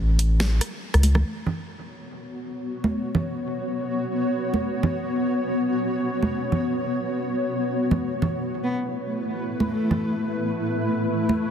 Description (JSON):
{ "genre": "deep dubstep", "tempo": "142 BPM", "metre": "4/4", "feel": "swing 56% on 16ths, half-time", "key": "unclear", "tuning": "A4 = 441 Hz", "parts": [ { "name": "soft dub sub bass", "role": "bass", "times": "0.0-1.2 s", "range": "A1 to C#2", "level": "-18 LUFS", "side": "equal", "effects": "none" }, { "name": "dubstep drum kit", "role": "drums", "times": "0.2-1.2 s", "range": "hi-hat, rim click, snare drum", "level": "-30 LUFS", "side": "equal", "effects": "low-pass filter on hats, soft clipping on snare, low-pass filter on snare" }, { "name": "congas", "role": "percussion", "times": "1.0-11.4 s", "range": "none", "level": "-26 LUFS", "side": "right 2 dB", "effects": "dub echo" }, { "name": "granular cloud pad", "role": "sustained chords", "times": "2.2-11.5 s", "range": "A3 to C#5", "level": "-25 LUFS", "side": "left 1 dB", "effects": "built-in reverb" }, { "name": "dark cello", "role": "melody", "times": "8.6-10.3 s", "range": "A3 to B3", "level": "-29 LUFS", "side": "left 1 dB", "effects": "dub echo" } ], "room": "light reverb, digital ambience", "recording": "dense, heavily limited modern master", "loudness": "-22 LUFS", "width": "side -8 dB against mid", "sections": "0.0-1.2 A section; 1.2-11.5 B section", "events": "none", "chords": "0.0 A; 1.2 Bsus2; 8.0 A5" }